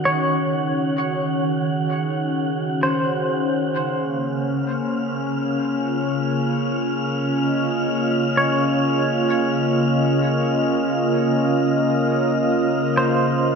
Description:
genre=ambient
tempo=free time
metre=none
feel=none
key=Db major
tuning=A4 = 440 Hz
part: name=warm analog pad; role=sustained chords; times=0.0-13.6 s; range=Db3 to Gb5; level=-20 LUFS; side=right 1 dB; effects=chorus, tremolo
part: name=analog drone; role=drone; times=0.0-13.6 s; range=Db3 to Db4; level=-26 LUFS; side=left 2 dB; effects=chorus
part: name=wind-like tuned noise texture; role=texture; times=0.0-13.6 s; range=Gb5 to F6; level=-29 LUFS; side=equal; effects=built-in reverb
part: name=clean electric guitar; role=arpeggios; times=0.1-13.6 s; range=C5 to Db5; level=-25 LUFS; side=equal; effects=tremolo, dub echo
room=wet echo chamber reverb, RT60 2.3 s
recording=echo-heavy mix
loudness=-18 LUFS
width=side -5 dB against mid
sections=0.0-13.6 A section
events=fade-in on synth drone 0.0-13.6; fade-in on synth texture 0.0-13.6; filter sweep on analog synth pad 0.0-13.6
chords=0.0 Ebm7; 3.8 Db69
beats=free time

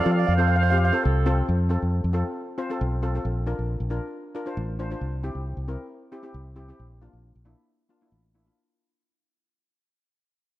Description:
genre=calypso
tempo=136 BPM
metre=4/4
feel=straight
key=F major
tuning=A4 = 442 Hz
part: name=steel pan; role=melody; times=0.0-0.9 s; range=F5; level=-28 LUFS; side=left 1 dB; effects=none
part: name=bright reedy baroque flute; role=second line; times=0.0-1.5 s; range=A4 to D5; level=-27 LUFS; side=right 8 dB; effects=none
part: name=steel pan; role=accompaniment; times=0.1-8.6 s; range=Bb3 to C5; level=-30 LUFS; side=left 2 dB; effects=none
part: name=fingered electric bass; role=bass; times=0.1-8.5 s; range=A1 to F3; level=-24 LUFS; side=equal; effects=none
room=light reverb, studio ambience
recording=none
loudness=-23 LUFS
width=side -15 dB against mid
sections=0.0-1.5 A section; 1.5-8.6 B section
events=fade-out 1.5-8.6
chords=0.0 F; 3.2 Bbmaj7; 5.0 C; 6.8 Bbmaj7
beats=0.16 0.60 1.04 | 1.48 1.92 2.37 2.81 | 3.25 3.69 4.13 4.58 | 5.02 5.46 5.91 6.35 | 6.79 7.23 7.68 8.12

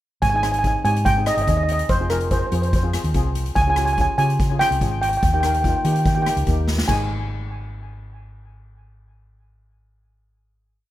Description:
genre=calypso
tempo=144 BPM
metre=4/4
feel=straight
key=Ab major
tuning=A4 = 440 Hz
part: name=steel pan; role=melody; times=0.2-10.9 s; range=Bb4 to Ab5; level=-22 LUFS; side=right 2 dB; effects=ping-pong delay
part: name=hollow-body short-scale fingered electric bass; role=bass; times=0.2-10.9 s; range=F1 to Eb3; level=-23 LUFS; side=equal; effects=none
part: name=street-band drum kit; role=drums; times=0.2-7.0 s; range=crash cymbal, hi-hat, kick drum, rim click, snare drum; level=-24 LUFS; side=equal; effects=none
part: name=steel pan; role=accompaniment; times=0.3-10.9 s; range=Bb3 to Bb4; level=-29 LUFS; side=left 3 dB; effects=none
room=wet studio ambience, RT60 0.5 s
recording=rough home demo mix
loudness=-17 LUFS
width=side -14 dB against mid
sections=0.2-6.9 verse; 6.9-10.2 final chord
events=drum fill 6.7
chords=0.2 Abmaj7; 1.9 Fm; 3.6 Db; 5.2 Eb; 6.9 Ab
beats=| 0.22 0.64 1.06 1.47 | 1.89 2.31 2.73 3.14 | 3.56 3.98 4.39 4.81 | 5.22 5.64 6.05 6.47 | 6.88 7.30 7.71 8.12 | 8.54 8.95 9.37 9.78

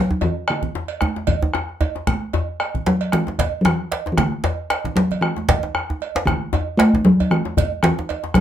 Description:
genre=west african traditional, West African drum ensemble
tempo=114 BPM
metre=4/4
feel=swing 55% on 16ths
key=unclear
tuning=A4 = 440 Hz
part: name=talking drum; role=melody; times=0.0-8.4 s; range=D3 to A3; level=-17 LUFS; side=equal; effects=none
part: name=djembe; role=percussion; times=0.1-8.3 s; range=none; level=-26 LUFS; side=left 4 dB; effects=none
part: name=djembe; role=percussion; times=0.1-8.4 s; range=none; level=-24 LUFS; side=right 2 dB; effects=none
part: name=bombo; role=percussion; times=0.2-8.4 s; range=none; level=-23 LUFS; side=left 2 dB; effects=none
part: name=congas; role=percussion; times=0.2-8.4 s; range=none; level=-29 LUFS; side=right 6 dB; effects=none
part: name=cowbell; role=percussion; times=0.2-8.2 s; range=none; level=-28 LUFS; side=right 11 dB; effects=none
room=wet studio ambience, RT60 0.5 s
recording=minimal, uncompressed stereo recording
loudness=-18 LUFS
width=side -10 dB against mid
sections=0.0-8.4 A section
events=drum fill 5.1-5.5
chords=none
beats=0.22 0.75 | 1.28 1.81 2.34 2.86 | 3.39 3.92 4.44 4.97 | 5.49 6.01 6.54 7.06 | 7.58 8.10

